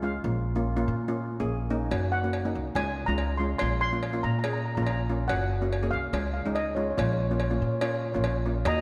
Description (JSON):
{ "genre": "calypso", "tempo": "142 BPM", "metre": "4/4", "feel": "straight", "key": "unclear", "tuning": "A4 = 440 Hz", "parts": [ { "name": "steel pan", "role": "melody", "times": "0.0-8.8 s", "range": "Db5 to C6", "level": "-34 LUFS", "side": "equal", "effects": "none" }, { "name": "steel pan", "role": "accompaniment", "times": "0.0-8.8 s", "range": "Ab3 to Ab4", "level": "-33 LUFS", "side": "equal", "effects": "none" }, { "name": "upright bass", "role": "bass", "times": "0.0-8.8 s", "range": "Gb1 to Bb2", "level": "-32 LUFS", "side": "equal", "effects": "none" }, { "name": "cowbell", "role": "percussion", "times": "1.9-8.8 s", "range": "none", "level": "-37 LUFS", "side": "equal", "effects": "none" } ], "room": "moderate concert hall reverb, RT60 1.8 s", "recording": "none", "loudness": "-28 LUFS", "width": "mono", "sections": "0.0-8.7 A section", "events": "none", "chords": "0.2 Bbm; 1.9 Gb; 2.8 Db; 3.6 Bbmadd9; 5.3 Gb; 6.1 Db; 7.0 Bbm", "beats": "| 0.24 0.66 1.08 1.50 | 1.92 2.34 2.76 3.19 | 3.61 4.03 4.45 4.87 | 5.29 5.71 6.14 6.56 | 6.98 7.40 7.82 8.24 | 8.66" }